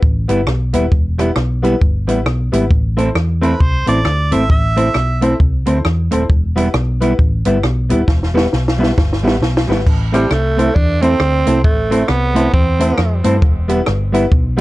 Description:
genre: ska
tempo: 134 BPM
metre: 4/4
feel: swing 60% on 8ths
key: A minor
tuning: A4 = 440 Hz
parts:
  - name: hollow-body short-scale fingered electric bass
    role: bass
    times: 0.0-14.6 s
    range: D#1 to G2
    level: -17 LUFS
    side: equal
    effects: none
  - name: compact cocktail drum kit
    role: drums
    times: 0.0-14.6 s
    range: crash cymbal, hi-hat, kick drum, rim click, snare drum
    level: -16 LUFS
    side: equal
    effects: none
  - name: semi-hollow electric guitar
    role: accompaniment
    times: 0.3-14.6 s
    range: G3 to E4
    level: -18 LUFS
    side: right 2 dB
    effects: none
  - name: honky-tonk upright piano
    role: stabs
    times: 0.3-14.6 s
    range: B3 to C5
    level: -20 LUFS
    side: left 3 dB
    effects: none
  - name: warm harmonica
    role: melody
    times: 3.4-5.4 s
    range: B4 to E5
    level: -19 LUFS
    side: right 3 dB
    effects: none
  - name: raspy tenor saxophone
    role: melody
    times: 10.1-13.2 s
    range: G3 to D4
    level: -18 LUFS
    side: right 3 dB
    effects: tape echo
room: light reverb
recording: dark, warm production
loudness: -12 LUFS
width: side -18 dB against mid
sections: 0.0-9.9 A section; 9.9-14.6 B section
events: drum fill 8.1-9.9; tenor saxophone solo 9.9-14.6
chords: 0.0 Em; 2.7 Am; 6.3 Em; 9.9 Am; 13.4 Em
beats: 0.02 0.47 | 0.91 1.36 1.81 2.26 | 2.71 3.15 3.60 4.05 | 4.50 4.95 5.39 5.84 | 6.29 6.74 7.19 7.63 | 8.08 8.53 8.97 9.42 | 9.87 10.31 10.76 11.20 | 11.65 12.09 12.54 12.98 | 13.43 13.87 14.31

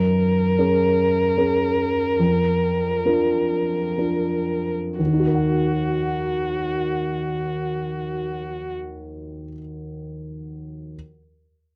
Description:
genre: neoclassical piano and strings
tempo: 58-78 BPM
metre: 3/4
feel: rubato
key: Eb minor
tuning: A4 = 439 Hz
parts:
  - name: muted violin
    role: melody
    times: 0.0-8.7 s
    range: Gb4 to Bb4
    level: -26 LUFS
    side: equal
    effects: none
  - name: warm baby grand piano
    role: accompaniment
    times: 0.0-11.0 s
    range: Eb2 to Gb5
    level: -25 LUFS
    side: equal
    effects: none
room: light reverb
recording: dry, close 1970s-style studio recording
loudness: -22 LUFS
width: mono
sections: 0.0-5.0 A section; 5.0-8.0 B section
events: slowing down 0.0-5.0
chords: 0.0 Gbadd9; 2.2 Bb/F; 5.0 Ebm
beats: 0.58 1.37 | 2.19 3.05 3.98 | 4.99 5.98 6.97

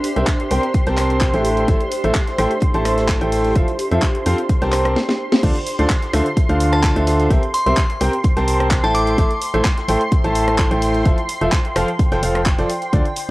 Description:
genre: piano house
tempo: 128 BPM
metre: 4/4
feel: straight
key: D minor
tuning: A4 = 440 Hz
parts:
  - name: analog string pad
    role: sustained chords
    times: 0.0-13.3 s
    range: C6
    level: -28 LUFS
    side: right 1 dB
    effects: ensemble chorus, sidechain pumping, cassette tape
  - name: house drum kit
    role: drums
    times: 0.0-13.3 s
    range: crash cymbal, handclaps, hi-hat, rim click, snare drum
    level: -23 LUFS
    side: equal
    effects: cassette tape
  - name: warm soul drum kit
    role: drums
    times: 0.0-13.3 s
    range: hi-hat, snare drum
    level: -38 LUFS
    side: right 1 dB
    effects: none
  - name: granular cloud pad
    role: texture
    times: 0.0-5.0, 9.5-13.3 s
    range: D4 to G5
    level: -27 LUFS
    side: equal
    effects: built-in reverb, sidechain pumping, cassette tape
  - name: clear baby grand piano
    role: riff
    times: 0.2-13.0 s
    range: D3 to A5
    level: -20 LUFS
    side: equal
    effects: sidechain pumping, cassette tape, analog delay
  - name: organ-like FM bass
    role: bass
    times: 0.2-13.0 s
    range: F1 to F2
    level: -21 LUFS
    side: equal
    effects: sidechain pumping
  - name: electronic kick drum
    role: drums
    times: 0.3-13.0 s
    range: none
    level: -17 LUFS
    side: equal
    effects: cassette tape
  - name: glassy synth bell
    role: melody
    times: 6.7-9.4 s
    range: A5 to D6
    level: -23 LUFS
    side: equal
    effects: chorus, cassette tape, analog delay
room: moderate booth ambience, RT60 0.2 s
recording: home recording on cassette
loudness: -15 LUFS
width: side -19 dB against mid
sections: 0.0-5.4 A section; 5.4-13.3 B section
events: drum fill 5.0-5.4; band accent 5.3; drop 5.4-13.3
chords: 0.0 C7; 1.4 Am; 3.6 Fmaj7; 4.5 C7(no3); 5.4 Dm7; 7.3 C7; 8.9 Am; 11.1 F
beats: 0.28 0.74 1.21 | 1.68 2.15 2.62 3.09 | 3.56 4.03 4.49 4.96 | 5.43 5.90 6.37 6.84 | 7.31 7.78 8.24 8.71 | 9.18 9.65 10.12 10.59 | 11.06 11.53 11.99 12.46 | 12.93

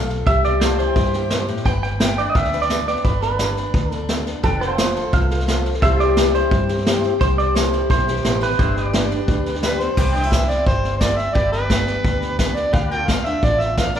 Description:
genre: honky-tonk and classic country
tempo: 173 BPM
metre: 4/4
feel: straight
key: C major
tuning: A4 = 445 Hz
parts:
  - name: clean electric guitar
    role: second line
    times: 0.0-9.6 s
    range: A4 to G5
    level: -23 LUFS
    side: right 3 dB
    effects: none
  - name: picked steel-string acoustic guitar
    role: accompaniment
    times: 0.0-14.0 s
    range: G2 to B4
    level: -25 LUFS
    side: left 4 dB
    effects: none
  - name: pedal steel guitar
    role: sustained chords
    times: 0.0-14.0 s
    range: F4 to A5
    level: -30 LUFS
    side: equal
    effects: none
  - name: vintage muted fingered electric bass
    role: bass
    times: 0.0-14.0 s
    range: F1 to G2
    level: -24 LUFS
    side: equal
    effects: none
  - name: vintage brush drum kit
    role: drums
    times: 0.1-14.0 s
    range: crash cymbal, hi-hat, kick drum, snare drum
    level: -21 LUFS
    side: equal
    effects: none
  - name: mellow tonewheel organ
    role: accompaniment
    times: 4.8-9.9 s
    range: D4 to C5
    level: -28 LUFS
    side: equal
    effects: slow rotary speaker
  - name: overdriven harmonica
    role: melody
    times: 9.6-14.0 s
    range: Bb4 to G5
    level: -21 LUFS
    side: right 1 dB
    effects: none
room: wet recital hall reverb, RT60 1.7 s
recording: recorded in a church or concert hall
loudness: -16 LUFS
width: side -9 dB against mid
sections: 0.0-10.0 A section; 10.0-14.0 B section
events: clean electric guitar solo 0.0-10.0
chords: 0.3 C; 1.7 G; 4.4 F; 5.8 C; 8.6 G; 10.0 C; 11.4 G; 12.7 Dm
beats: | 0.27 0.62 0.97 1.31 | 1.66 2.01 2.36 2.70 | 3.05 3.40 3.75 4.09 | 4.44 4.79 5.13 5.48 | 5.83 6.17 6.52 6.87 | 7.21 7.56 7.90 8.25 | 8.59 8.94 9.29 9.63 | 9.98 10.32 10.67 11.01 | 11.36 11.71 12.05 12.40 | 12.74 13.09 13.43 13.78

